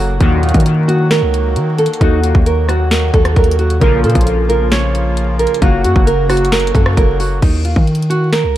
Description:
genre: hip hop, trap.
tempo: 133 BPM.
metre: 4/4.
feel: half-time.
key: unclear.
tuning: A4 = 440 Hz.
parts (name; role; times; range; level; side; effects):
nylon-string guitar; melody; 0.0-8.6 s; Eb4 to Db5; -17 LUFS; right 3 dB; low-pass filter.
warbly lo-fi synth keys; accompaniment; 0.0-7.4 s; Db3 to Gb4; -21 LUFS; left 4 dB; chorus, low-pass filter.
accordion; sustained chords; 0.0-7.4 s; Db3 to Gb4; -25 LUFS; equal; light tremolo tuning.
long sustained 808-style bass; bass; 0.0-8.6 s; Gb1 to Eb3; -15 LUFS; equal; none.
resonant sweep polysynth; stabs; 0.2-0.6, 3.8-4.2 s; Gb2 to F3; -23 LUFS; equal; chorus, ping-pong delay.
trap drum kit; drums; 0.2-8.4 s; crash cymbal, hi-hat, kick drum, rim click, snare drum; -15 LUFS; equal; none.
room: digital ambience.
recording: dark, warm production, vinyl crackle.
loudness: -11 LUFS.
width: side -13 dB against mid.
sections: 0.0-7.4 A section; 7.4-8.6 B section.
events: none.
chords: 0.2 Ebm; 3.8 Bbm; 5.6 Gb; 7.4 Eb5.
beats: | 0.21 0.66 1.11 1.56 | 2.01 2.46 2.91 3.36 | 3.81 4.27 4.72 5.17 | 5.62 6.07 6.52 6.97 | 7.42 7.88 8.33.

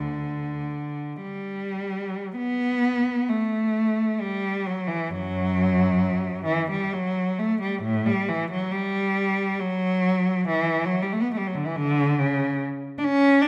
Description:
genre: classical, free, expressive piece for unaccompanied cello.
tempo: 48-72 BPM.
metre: 3/4.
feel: rubato.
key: D major.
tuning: A4 = 440 Hz.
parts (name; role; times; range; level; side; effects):
rich cello; solo; 0.0-13.5 s; D2 to D4; -25 LUFS; equal; none.
room: wet recital hall reverb, RT60 1.4 s.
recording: none.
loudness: -25 LUFS.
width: mono.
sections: 0.0-2.3 A section; 2.3-13.5 A section.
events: none.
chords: none.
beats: 0.07 1.21 | 2.34 3.27 4.19 | 5.10 6.00 6.92 | 7.81 8.70 9.57 | 10.47 11.32 12.19 | 13.03.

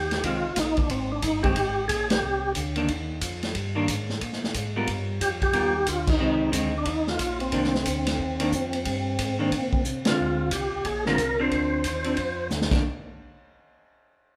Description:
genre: soul jazz organ trio.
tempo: 181 BPM.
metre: 4/4.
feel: swing 63% on 8ths.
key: C minor.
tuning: A4 = 443 Hz.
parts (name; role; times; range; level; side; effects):
percussive tonewheel organ; melody; 0.0-2.5, 5.2-12.5 s; C4 to C5; -29 LUFS; equal; slow rotary speaker, overdrive, chorus vibrato.
tonewheel organ; bass; 0.0-12.8 s; G1 to C3; -34 LUFS; equal; slow rotary speaker.
vintage drum kit; drums; 0.1-12.8 s; crash cymbal, hi-hat, kick drum, ride cymbal, snare drum; -31 LUFS; equal; none.
vintage hollow-body jazz guitar; accompaniment; 0.2-12.8 s; D3 to Bb4; -31 LUFS; equal; none.
room: wet large studio reverb, RT60 1.2 s.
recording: band playing live in one room.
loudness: -26 LUFS.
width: mono.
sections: 0.0-10.2 A section; 10.2-12.8 B section; 12.8-14.2 C section.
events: band accent 2.1, 6.0, 10.0; drum fill 9.9-10.2, 12.5-12.8.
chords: 0.0 Fm7; 2.2 Cm9; 4.9 G7#9; 6.2 Fm7; 7.5 Cm9; 10.2 Dm7b5; 11.5 Dm7; 12.7 Cm9; 12.8 N.C..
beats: 0.23 0.57 | 0.90 1.23 1.56 1.89 | 2.22 2.55 2.88 3.22 | 3.55 3.88 4.21 4.54 | 4.88 5.21 5.54 5.87 | 6.20 6.53 6.87 7.20 | 7.53 7.86 8.19 8.52 | 8.86 9.19 9.52 9.85 | 10.18 10.51 10.85 11.18 | 11.51 11.84 12.17 12.50.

